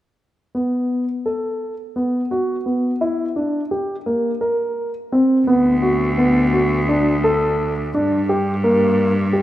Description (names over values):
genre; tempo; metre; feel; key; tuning
contemporary instrumental, contemporary; 171 BPM (eighths); 7/8; straight; D mixolydian; A4 = 442 Hz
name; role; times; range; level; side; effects
dark baby grand piano; arpeggios; 0.5-9.4 s; Bb3 to Bb4; -18 LUFS; equal; none
clear cello; bass; 5.5-9.4 s; D2 to G2; -20 LUFS; equal; none
room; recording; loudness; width
moderate concert hall reverb, RT60 2.2 s; none; -17 LUFS; side -14 dB against mid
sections
0.6-5.5 A section; 5.5-9.4 B section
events
none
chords
0.6 F#madd11/B (rootless); 3.0 Gm6; 5.5 D6; 7.9 Gm